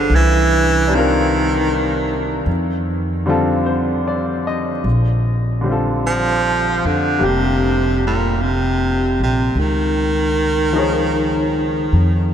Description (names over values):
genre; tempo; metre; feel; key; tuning
jazz ballad; 51 BPM; 4/4; swing 69% on 8ths; Bb major; A4 = 438 Hz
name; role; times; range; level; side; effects
bright baritone saxophone; melody; 0.0-12.3 s; Bb2 to F3; -18 LUFS; right 1 dB; none
bright upright piano; accompaniment; 0.0-12.3 s; D3 to Eb5; -22 LUFS; left 2 dB; none
upright bass; bass; 0.0-12.3 s; F1 to F2; -20 LUFS; equal; none
room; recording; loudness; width
wet cathedral reverb, RT60 7.1 s; in a vast, echoing space; -15 LUFS; side -9 dB against mid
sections
0.0-4.8 A section; 4.8-12.3 B section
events
baritone saxophone solo 0.0-4.8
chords
0.1 Cm7; 2.5 F69; 4.8 Bbmaj9; 9.6 Db69